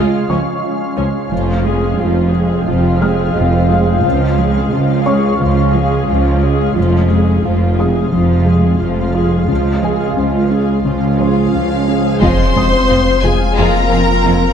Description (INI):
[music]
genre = cinematic, hybrid orchestral and electronic film score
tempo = 88 BPM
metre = 4/4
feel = straight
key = F minor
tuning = A4 = 440 Hz
[part]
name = rich studio viola section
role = accompaniment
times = 0.0-14.5 s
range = F3 to C5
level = -19 LUFS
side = right 1 dB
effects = none
[part]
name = shimmering ambient pad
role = sustained chords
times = 0.0-14.5 s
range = C3 to F5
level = -19 LUFS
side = equal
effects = chorus, built-in reverb
[part]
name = tight sequenced synth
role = arpeggios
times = 0.0-14.5 s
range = Db3 to F4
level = -23 LUFS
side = equal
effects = none
[part]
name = clear symphonic cello section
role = bass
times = 0.0-14.3 s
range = Db2 to F2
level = -18 LUFS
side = equal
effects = none
[part]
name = rich symphonic double bass section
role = bass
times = 0.0-14.3 s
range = F1 to Db2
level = -18 LUFS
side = right 2 dB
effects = none
[part]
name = felt-muted upright piano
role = texture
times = 0.0-14.5 s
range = C5 to F6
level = -27 LUFS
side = left 3 dB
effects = digital delay
[part]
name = clear chamber violin section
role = melody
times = 11.2-14.5 s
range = F5 to C6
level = -20 LUFS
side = left 4 dB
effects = none
[part]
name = dark French horn section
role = sustained chords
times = 11.2-14.5 s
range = F3 to C4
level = -20 LUFS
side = left 6 dB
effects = none
[part]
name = clear symphonic violin section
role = second line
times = 12.2-14.3 s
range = Ab3 to F4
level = -22 LUFS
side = left 4 dB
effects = none
[part]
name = clear trombone section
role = sustained chords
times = 12.2-13.8 s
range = F3 to Ab3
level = -26 LUFS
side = right 2 dB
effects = none
[part]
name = pure sine sub bass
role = bass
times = 12.2-14.5 s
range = F1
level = -18 LUFS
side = left 1 dB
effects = none
[part]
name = impact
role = sound effects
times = 12.2-14.5 s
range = none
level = -21 LUFS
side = left 1 dB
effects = none
[sound]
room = moderate scoring stage reverb, RT60 2.0 s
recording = dark, warm production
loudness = -11 LUFS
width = side -8 dB against mid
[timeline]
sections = 0.0-12.2 A section; 12.2-14.5 B section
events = build-up 0.0-12.2; impact 12.2-14.5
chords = 0.0 Db; 1.3 Fm; 4.0 Db; 6.8 Fm; 9.5 Db; 12.2 Fm